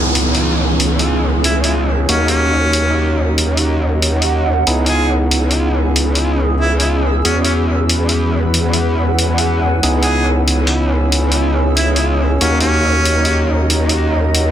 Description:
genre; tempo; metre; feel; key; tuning
glitch hop; 93 BPM; 4/4; swing 60% on 16ths; C# dorian; A4 = 441 Hz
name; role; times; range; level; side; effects
dark analog pad; sustained chords; 0.4-14.5 s; E3 to E6; -26 LUFS; right 1 dB; chorus, vintage 12-bit sampler grit
barky tine electric piano; stabs; 0.0-14.5 s; A#3 to G#4; -21 LUFS; equal; overdrive, low-pass filter, tape echo
growl bass; bass; 0.0-14.5 s; C#2 to E2; -16 LUFS; equal; chorus, tube saturation
downlifter; sound effects; 0.0-4.7 s; none; -23 LUFS; right 1 dB; none
granular cloud pad; texture; 0.0-14.5 s; E3 to E6; -22 LUFS; right 1 dB; built-in reverb
electronic hi-hat; drums; 0.2-14.5 s; none; -18 LUFS; left 1 dB; overdrive
warm harmonica; melody; 1.4-13.5 s; C#4 to G#4; -21 LUFS; equal; tape echo
room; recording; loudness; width
moderate small room ambience, RT60 0.5 s; dense, heavily limited modern master; -12 LUFS; side -10 dB against mid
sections
0.0-14.5 A section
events
none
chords
0.0 C#m7; 2.1 D#m7; 4.7 C#m7; 7.3 E6; 9.8 C#m7; 12.4 D#m7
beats
0.15 0.80 1.44 | 2.09 2.73 3.38 4.03 | 4.67 5.32 5.96 6.61 | 7.25 7.90 8.54 9.19 | 9.83 10.48 11.12 11.77 | 12.41 13.06 13.70 14.35

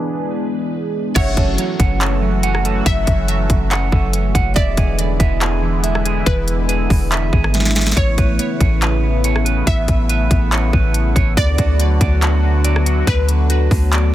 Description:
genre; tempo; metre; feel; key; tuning
hip hop, atmospheric cloud-rap; 141 BPM; 4/4; half-time; F# minor; A4 = 439 Hz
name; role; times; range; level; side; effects
glassy wavetable pluck; melody; 0.0-14.1 s; B4 to E5; -26 LUFS; equal; chorus, digital delay
sweeping resonant pad; sustained chords; 0.0-14.1 s; C#3 to G#4; -22 LUFS; left 1 dB; chorus, sidechain pumping
guzheng; texture; 0.0-14.1 s; G#3 to E5; -35 LUFS; left 3 dB; none
clean electric guitar; arpeggios; 1.2-14.1 s; D3 to F#5; -24 LUFS; right 7 dB; digital delay
soft 808-style bass; bass; 1.2-14.1 s; E1 to D2; -17 LUFS; equal; none
trap drum kit; drums; 1.2-14.0 s; crash cymbal, handclaps, hi-hat, kick drum, rim click, snare drum; -18 LUFS; equal; none
room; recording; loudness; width
little or no reverb; dense, heavily limited modern master, low-pass filter; -14 LUFS; side -13 dB against mid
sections
0.0-1.2 A section; 1.2-14.1 B section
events
filter sweep 0.0-1.2; drum fill 7.5-8.0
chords
0.0 E7; 1.2 F#m7; 4.6 E7; 8.0 Aadd9; 11.4 D6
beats
0.31 0.73 | 1.16 1.58 2.01 2.44 | 2.86 3.29 3.71 4.14 | 4.56 4.99 5.41 5.84 | 6.26 6.69 7.12 7.54 | 7.97 8.39 8.82 9.24 | 9.67 10.10 10.52 10.95 | 11.37 11.80 12.22 12.65 | 13.07 13.50 13.93

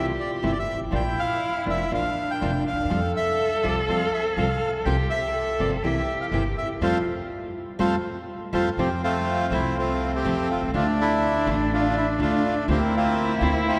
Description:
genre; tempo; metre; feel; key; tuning
tango; 122 BPM; 4/4; rubato; F major; A4 = 440 Hz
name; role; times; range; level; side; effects
bandoneon; melody; 0.0-13.8 s; A3 to G5; -28 LUFS; equal; none
warm cello; second line; 0.0-13.8 s; C4 to A4; -30 LUFS; equal; none
nylon-string guitar; accompaniment; 0.0-13.5 s; C3 to F4; -33 LUFS; equal; none
upright bass; bass; 0.0-13.8 s; F1 to F2; -31 LUFS; equal; none
room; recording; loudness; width
wet cathedral reverb, RT60 4.4 s; recorded in a church or concert hall; -24 LUFS; mono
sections
0.0-8.8 A section; 8.8-13.8 A section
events
band accent 6.8-8.8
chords
0.0 C6; 0.9 Bb; 2.9 Fadd9; 4.9 C7sus4; 5.8 C7; 6.8 Fadd9; 8.8 F; 10.7 Dm; 12.7 Bbadd9/D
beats
0.43 | 0.93 1.42 1.92 2.41 | 2.90 3.39 3.88 4.37 | 4.86 5.35 5.84 6.33 | 6.82 7.30 7.79 8.29 | 8.78 9.27 9.76 10.25 | 10.73 11.22 11.71 12.20 | 12.69 13.18 13.66

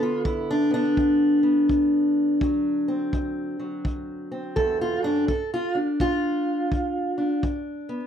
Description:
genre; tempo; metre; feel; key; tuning
acoustic country blues, solo or duo; 84 BPM; 4/4; swing 62% on 8ths; unclear; A4 = 439 Hz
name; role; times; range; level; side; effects
fingerpicked steel-string acoustic guitar; melody; 0.0-8.1 s; D2 to A4; -22 LUFS; equal; slapback echo
kick drum; drums; 0.3-7.6 s; none; -29 LUFS; equal; none
room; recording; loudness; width
little or no reverb; dry, close 1970s-style studio recording; -21 LUFS; side -8 dB against mid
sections
0.0-8.1 A section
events
steel-string acoustic guitar solo 0.0-8.1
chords
0.0 G; 2.4 D7; 5.3 G7(no3)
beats
0.25 0.97 1.69 | 2.41 3.13 3.85 4.56 | 5.28 6.00 6.72 7.43

